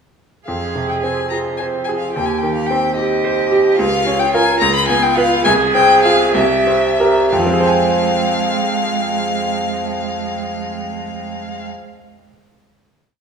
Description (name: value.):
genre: quick classical-period movement for piano trio.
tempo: 60-74 BPM (dotted quarters).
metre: 6/8.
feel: rubato.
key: F minor.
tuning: A4 = 440 Hz.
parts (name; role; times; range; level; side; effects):
rich violin; melody; 0.5-11.7 s; Eb5 to Cb6; -18 LUFS; left 4 dB; none.
rich cello; second line; 0.5-11.7 s; Ab3 to Ab4; -21 LUFS; right 7 dB; none.
bright grand piano; accompaniment; 0.5-12.0 s; C2 to Ab5; -17 LUFS; right 1 dB; none.
room: wet recital hall reverb, RT60 1.6 s.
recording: small room reverb.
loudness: -14 LUFS.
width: side -6 dB against mid.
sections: 0.5-7.3 A section; 7.3-11.0 final chord.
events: slowing down 3.0-7.3.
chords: 0.5 Fm; 2.1 Cm/Eb; 3.8 Bbm/Db; 4.6 Db7; 5.5 Fm/C; 6.3 C7; 7.3 Fm.